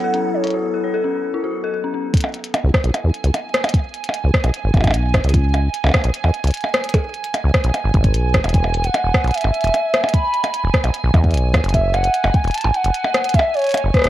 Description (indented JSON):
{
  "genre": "IDM",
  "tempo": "150 BPM",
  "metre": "4/4",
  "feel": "straight",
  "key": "unclear",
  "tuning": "A4 = 440 Hz",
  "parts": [
    { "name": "warbly nostalgic lead", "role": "melody", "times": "0.0-0.5, 8.5-14.1 s", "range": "B4 to B5", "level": "-20 LUFS", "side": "equal", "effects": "chorus, tremolo, tape echo" },
    { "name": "icy glass pad", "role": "sustained chords", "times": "0.0-14.1 s", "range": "F#3 to G#5", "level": "-26 LUFS", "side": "right 3 dB", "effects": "chorus, built-in reverb" },
    { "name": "dark detuned synth bell", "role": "arpeggios", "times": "0.0-2.0 s", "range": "C#4 to C#5", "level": "-24 LUFS", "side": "left 5 dB", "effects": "chorus, phaser, tape echo" },
    { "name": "glitchy drum kit", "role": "drums", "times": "0.1-14.1 s", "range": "hi-hat, percussion blips, rim click", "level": "-21 LUFS", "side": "equal", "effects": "low-pass filter on hats, low-pass filter on perc, low-pass filter on snare, low-pass filter on room" },
    { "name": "electronic kick drum", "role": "drums", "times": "2.1-14.0 s", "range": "none", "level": "-16 LUFS", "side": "equal", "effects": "none" },
    { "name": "deep acid bass", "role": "bass", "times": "2.6-14.1 s", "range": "E1 to E2", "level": "-17 LUFS", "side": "equal", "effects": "none" }
  ],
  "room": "light reverb, digital ambience",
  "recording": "worn, warbling old tape, cassette tape, warbly pitch drift",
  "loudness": "-16 LUFS",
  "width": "side -14 dB against mid",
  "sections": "0.0-2.1 A section; 2.1-14.1 B section",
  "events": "break 0.5-2.1",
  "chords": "0.0 F#m7; 2.1 N.C.; 5.3 E6 (rootless); 8.5 E; 11.7 N.C."
}